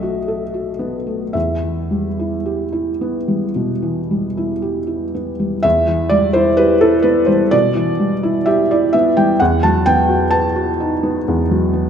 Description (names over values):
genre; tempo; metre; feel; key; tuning
classical, romantic nocturne for solo piano; 53-68 BPM; 4/4; rubato; E minor; A4 = 440 Hz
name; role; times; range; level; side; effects
felt-muted upright piano; solo; 0.0-11.9 s; B1 to A5; -14 LUFS; equal; none
room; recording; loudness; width
moderate concert hall reverb, RT60 2.3 s; minimal, uncompressed stereo recording; -14 LUFS; side -8 dB against mid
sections
0.0-5.6 A section; 5.6-11.9 B section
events
none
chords
0.0 B7; 1.3 Em; 9.4 B7/E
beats
0.27 | 1.34 2.45 3.55 4.61 | 5.64 6.59 7.53 8.47 | 9.40 10.31 11.25